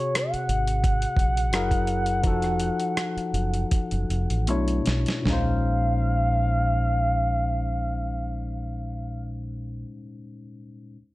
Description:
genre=R&B, neo-soul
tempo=75-88 BPM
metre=4/4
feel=swing 54% on 16ths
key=Bb minor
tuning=A4 = 438 Hz
part: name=gliding portamento lead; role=melody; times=0.0-9.2 s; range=Db5 to Gb5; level=-28 LUFS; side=equal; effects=chorus
part: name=barky tine electric piano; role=accompaniment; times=0.0-11.0 s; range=Bb2 to C#5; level=-30 LUFS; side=left 3 dB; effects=overdrive
part: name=dusty soul sampler-style drum kit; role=drums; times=0.2-5.5 s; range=hi-hat, kick drum, rim click, snare drum, toms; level=-26 LUFS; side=equal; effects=none
part: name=deep dub fingered electric bass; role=bass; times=0.3-9.8 s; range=F1 to B1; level=-26 LUFS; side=equal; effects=none
room=light reverb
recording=none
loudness=-22 LUFS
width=side -18 dB against mid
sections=0.0-5.3 A section; 5.3-8.5 B section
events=slowing down 0.0-5.3; drum fill 3.7-5.3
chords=0.0 Ab9; 1.5 Gb9; 2.2 F7b9; 4.5 Bm11; 5.3 Bbm11

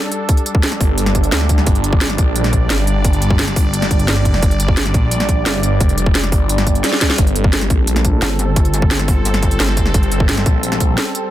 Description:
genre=dark technical drum and bass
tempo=174 BPM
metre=4/4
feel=straight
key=G minor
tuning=A4 = 440 Hz
part: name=sweeping resonant pad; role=sustained chords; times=0.0-11.3 s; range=G3 to D5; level=-22 LUFS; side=equal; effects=chorus, sidechain pumping
part: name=drum and bass drum kit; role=drums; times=0.1-11.2 s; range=hi-hat, snare drum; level=-19 LUFS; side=equal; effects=none
part: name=electronic kick drum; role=drums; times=0.3-10.9 s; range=none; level=-15 LUFS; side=equal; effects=overdrive
part: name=phased detuned saw bass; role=bass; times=0.8-11.0 s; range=F1 to D2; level=-17 LUFS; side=equal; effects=phaser, overdrive
part: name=pulsing pluck wobble bass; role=bass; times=8.2-9.9 s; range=G1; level=-17 LUFS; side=equal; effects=chorus
room=little or no reverb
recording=dense, heavily limited modern master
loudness=-13 LUFS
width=side -13 dB against mid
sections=0.0-11.3 A section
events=drum fill 6.8-7.2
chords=0.0 G5

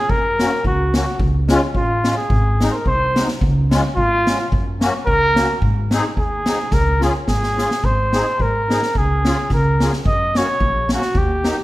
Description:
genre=alpine folk, alpine dance band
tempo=109 BPM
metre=2/4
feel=swing 54% on 8ths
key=Db major, Ab major from 7.8 s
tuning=A4 = 438 Hz
part: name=mellow trumpet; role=melody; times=0.0-11.6 s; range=F4 to Eb5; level=-19 LUFS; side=equal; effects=none
part: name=upright bass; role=bass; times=0.1-11.5 s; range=Ab1 to Ab2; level=-21 LUFS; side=equal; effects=none
part: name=street-band drum kit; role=drums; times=0.1-11.6 s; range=hi-hat, kick drum, snare drum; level=-21 LUFS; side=equal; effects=none
part: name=musette accordion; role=accompaniment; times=0.4-11.6 s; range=Ab3 to Ab4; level=-24 LUFS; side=left 2 dB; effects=none
room=moderate recital hall reverb, RT60 1.3 s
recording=none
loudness=-15 LUFS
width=side -17 dB against mid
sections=0.0-7.8 A section; 7.8-11.6 B section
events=drum fill 6.7-7.8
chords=0.1 Gb; 1.2 Db; 2.3 Ab; 3.4 Db; 4.5 Gb; 5.6 Ab; 6.7 Db; 7.8 Ab; 9.0 Db; 10.1 Gb

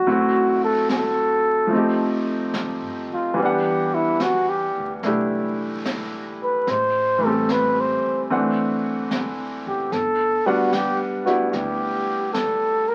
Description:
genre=jazz ballad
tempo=73 BPM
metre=4/4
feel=swing 67% on 8ths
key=G major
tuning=A4 = 440 Hz
part: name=mellow flugelhorn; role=melody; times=0.0-12.9 s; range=E4 to C5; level=-23 LUFS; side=equal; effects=none
part: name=bright baby grand piano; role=accompaniment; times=0.0-12.9 s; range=E3 to F#5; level=-26 LUFS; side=equal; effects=none
part: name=upright bass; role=bass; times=0.0-12.9 s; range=F#1 to G2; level=-40 LUFS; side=equal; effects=none
part: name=jazz brush drum kit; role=drums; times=0.1-12.9 s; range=brushed snare drum, hi-hat, snare drum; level=-34 LUFS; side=equal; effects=none
room=moderate studio reverb, RT60 0.5 s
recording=very old 78 rpm record, vinyl crackle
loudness=-22 LUFS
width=mono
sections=0.0-12.9 A section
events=none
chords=0.1 F#m7b5; 1.7 F9; 3.4 Em9; 6.7 Am7; 8.3 D9; 9.9 Gmaj7

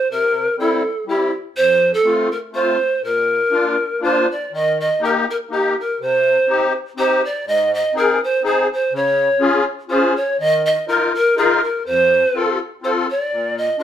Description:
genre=alpine folk, alpine dance band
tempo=122 BPM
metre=3/4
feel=swing 53% on 8ths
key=Bb major, Eb major from 4.5 s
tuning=A4 = 439 Hz
part: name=breathy pan flute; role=melody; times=0.0-13.8 s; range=G4 to Eb5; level=-16 LUFS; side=right 1 dB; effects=none
part: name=musette accordion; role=accompaniment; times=0.1-13.8 s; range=F2 to Bb4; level=-20 LUFS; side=left 4 dB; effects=none
room=wet studio reverb, RT60 0.6 s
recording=band playing live in one room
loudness=-15 LUFS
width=side -10 dB against mid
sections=0.0-4.5 A section; 4.5-13.8 B section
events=none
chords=0.1 C7; 1.6 F; 3.0 Bb; 4.5 Eb; 6.0 Cm; 7.5 Ab; 8.9 Db; 10.4 Ebsus2; 11.9 F; 13.3 Bb

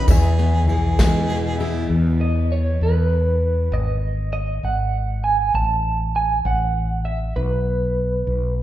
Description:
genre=acoustic folk duo or small band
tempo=66 BPM (dotted quarters)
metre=6/8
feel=straight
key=E major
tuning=A4 = 440 Hz
part: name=electric guitar through a small old amp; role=melody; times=0.0-8.5 s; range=B4 to A5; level=-23 LUFS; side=right 3 dB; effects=tremolo
part: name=warm harmonica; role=second line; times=0.0-1.9 s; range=E4 to G#4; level=-28 LUFS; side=right 1 dB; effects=none
part: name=nylon-string guitar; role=accompaniment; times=0.0-3.7 s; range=E2 to G#4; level=-23 LUFS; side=left 3 dB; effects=none
part: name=mellow fretless electric bass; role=bass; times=0.0-8.6 s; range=G#1 to E2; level=-20 LUFS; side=equal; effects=none
part: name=vintage brush drum kit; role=drums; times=0.1-1.7 s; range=kick drum, ride cymbal, snare drum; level=-21 LUFS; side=equal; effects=none
part: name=tambourine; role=percussion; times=0.1-1.4 s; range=none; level=-38 LUFS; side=left 8 dB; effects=none
room=wet recital hall reverb, RT60 1.6 s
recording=recorded in a church or concert hall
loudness=-18 LUFS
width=side -13 dB against mid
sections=0.0-1.9 A section; 1.9-8.6 B section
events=none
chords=0.1 E; 1.9 E5; 3.7 G#5; 5.5 F#m/A; 7.4 N.C.

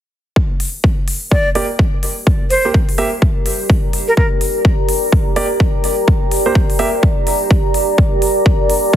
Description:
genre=bass house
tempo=126 BPM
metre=4/4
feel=swing 60% on 16ths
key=G minor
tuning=A4 = 440 Hz
part: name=electronic kick drum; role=drums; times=0.4-9.0 s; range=none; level=-14 LUFS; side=equal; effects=overdrive, studio reverb
part: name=deep dark ambient pad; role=texture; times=2.1-9.0 s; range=G4 to Bb5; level=-18 LUFS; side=equal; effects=chorus, built-in reverb, sidechain pumping
part: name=electronic hi-hat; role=drums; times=0.6-8.8 s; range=none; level=-24 LUFS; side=left 2 dB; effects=overdrive, studio reverb
part: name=breathy bright concert flute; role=melody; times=1.3-4.3, 8.9-9.0 s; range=Bb4 to D5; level=-18 LUFS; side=equal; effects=digital delay
part: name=warm concert grand piano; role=stabs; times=1.6-6.9 s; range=Bb3 to E5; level=-21 LUFS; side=right 3 dB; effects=sidechain pumping, low-pass filter, digital delay
room=small room ambience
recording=heavily compressed radio sound, multiband compression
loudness=-13 LUFS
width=side -11 dB against mid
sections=0.4-9.0 A section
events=none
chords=0.4 Gm

